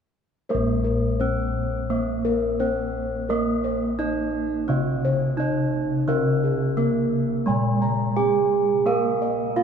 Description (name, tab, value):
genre	Javanese gamelan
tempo	86 BPM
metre	4/4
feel	straight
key	Bb slendro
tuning	A4 = 439 Hz
part	gamelan-type bronze metallophone	melody	0.5-9.6 s	Ab3-40c to Bb4	-25 LUFS	right 4 dB	none
part	gamelan-type bronze metallophone	accompaniment	0.5-9.6 s	C3+40c to Bb3	-27 LUFS	right 1 dB	none
part	gamelan-type bossed gongs	arpeggios	0.5-9.6 s	Ab4-40c to Bb5	-27 LUFS	left 4 dB	none
part	gamelan-type bossed gongs	bass	0.5-9.6 s	Bb1 to Bb4	-27 LUFS	left 1 dB	none
room	wet cathedral reverb, RT60 6.1 s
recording	recorded in a church or concert hall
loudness	-21 LUFS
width	side -7 dB against mid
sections	0.5-9.6 A section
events	none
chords	none